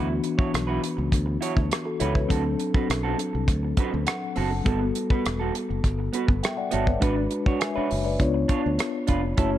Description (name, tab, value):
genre	lush 1970s-style soul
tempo	102 BPM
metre	4/4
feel	straight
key	D major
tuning	A4 = 439 Hz
part	mellow tine electric piano	accompaniment	0.0-9.6 s	E3 to A5	-27 LUFS	left 3 dB	medium stereo tremolo
part	electric guitar through a small old amp	riff	0.0-9.6 s	B3 to C#5	-30 LUFS	right 6 dB	spring reverb
part	modern bright fingered electric bass	bass	0.0-9.6 s	E1 to D2	-28 LUFS	equal	none
part	damped 70s drum kit	drums	0.2-9.5 s	hi-hat, kick drum, rim click	-25 LUFS	equal	none
room	light reverb, small room ambience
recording	dark, warm production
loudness	-22 LUFS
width	side -12 dB against mid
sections	0.0-9.6 A section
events	tine electric piano fill 3.8-4.7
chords	0.0 D69; 2.3 D7; 4.7 Gmaj9; 7.0 G#m7b5; 8.2 C#7b9